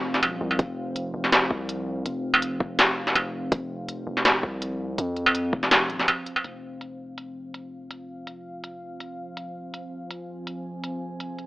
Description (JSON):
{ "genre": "half-time drum and bass", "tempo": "164 BPM", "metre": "4/4", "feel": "swing 54% on 16ths, half-time", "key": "F minor", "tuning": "A4 = 440 Hz", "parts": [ { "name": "deep dark ambient pad", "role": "sustained chords", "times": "0.0-11.5 s", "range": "F3 to Ab5", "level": "-34 LUFS", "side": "equal", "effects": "chorus, built-in reverb, vintage 12-bit sampler grit, sidechain pumping" }, { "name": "long sustained 808-style bass", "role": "bass", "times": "0.0-11.5 s", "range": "F1 to F2", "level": "-34 LUFS", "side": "equal", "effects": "none" }, { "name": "industrial drum kit", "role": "drums", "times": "0.1-11.5 s", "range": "hi-hat, snare drum, struck metal", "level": "-21 LUFS", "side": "equal", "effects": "low-pass filter on hats, low-pass filter on perc, low-pass filter on snare" }, { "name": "electronic kick drum", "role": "drums", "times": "0.6-5.6 s", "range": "none", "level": "-24 LUFS", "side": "equal", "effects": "none" } ], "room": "moderate digital room reverb, RT60 1.1 s", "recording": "AM radio sound", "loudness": "-22 LUFS", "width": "side -20 dB against mid", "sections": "0.0-6.4 A section; 6.4-11.5 B section", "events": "break 6.1-6.4", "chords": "0.0 F5" }